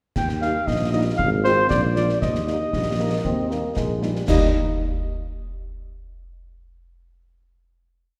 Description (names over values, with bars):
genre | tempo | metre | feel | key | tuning
military-style march for wind band | 117 BPM | 2/4 | straight | Eb major | A4 = 440 Hz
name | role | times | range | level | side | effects
mellow cornet | melody | 0.2-4.5 s | C5 to G5 | -26 LUFS | equal | none
dark tuba | bass | 0.2-4.5 s | Ab1 to Eb2 | -27 LUFS | equal | none
concert snare drum, clash cymbals and concert bass drum | drums | 0.2-4.6 s | none | -29 LUFS | equal | none
mellow French horn section | accompaniment | 0.4-4.5 s | F3 to F4 | -31 LUFS | equal | none
clear euphonium | second line | 2.7-4.3 s | G3 to C4 | -32 LUFS | equal | none
room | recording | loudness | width
wet scoring stage reverb, RT60 2.0 s | recorded in a church or concert hall | -22 LUFS | mono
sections
0.2-4.3 A section; 4.3-5.3 final chord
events
none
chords
0.2 Eb; 1.2 Fm/Ab; 1.7 Bb; 2.2 Eb